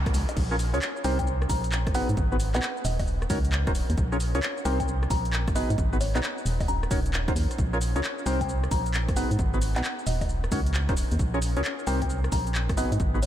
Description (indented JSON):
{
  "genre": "UK garage, two-step garage",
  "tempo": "133 BPM",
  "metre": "4/4",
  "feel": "swing 65% on 16ths",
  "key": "unclear",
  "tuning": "A4 = 444 Hz",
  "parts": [
    { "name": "kalimba", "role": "melody", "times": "0.0-13.3 s", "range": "Db5 to Bb5", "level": "-35 LUFS", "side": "left 2 dB", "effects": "analog delay" },
    { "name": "organ-like FM bass", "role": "bass", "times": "0.0-13.3 s", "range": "Eb1 to Ab2", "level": "-27 LUFS", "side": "equal", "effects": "sidechain pumping" },
    { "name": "electronic kick drum", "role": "drums", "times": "0.1-13.1 s", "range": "none", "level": "-29 LUFS", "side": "equal", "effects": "none" },
    { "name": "punchy analog drum machine", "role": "drums", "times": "0.1-13.3 s", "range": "bongos, crash cymbal, handclaps, hi-hat, rim click, shaker", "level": "-34 LUFS", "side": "left 1 dB", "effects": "none" },
    { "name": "percussive organ stab", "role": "stabs", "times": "0.5-13.2 s", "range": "Cb4 to Db5", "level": "-31 LUFS", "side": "equal", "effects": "wide subtle chorus, analog delay" }
  ],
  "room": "light reverb, digital ambience",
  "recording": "none",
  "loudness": "-24 LUFS",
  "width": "side -11 dB against mid",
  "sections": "0.0-13.3 A section",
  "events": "none",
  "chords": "0.4 Bbm7; 1.0 Cm7; 1.9 Abm7; 3.1 Ebm7; 4.0 Bbm7; 4.7 Cm7; 5.6 Abm7; 6.7 Ebm7; 7.6 Bbm7; 8.3 Cm7; 9.2 Abm7; 10.3 Ebm7; 11.2 Bbm7; 11.9 Cm7"
}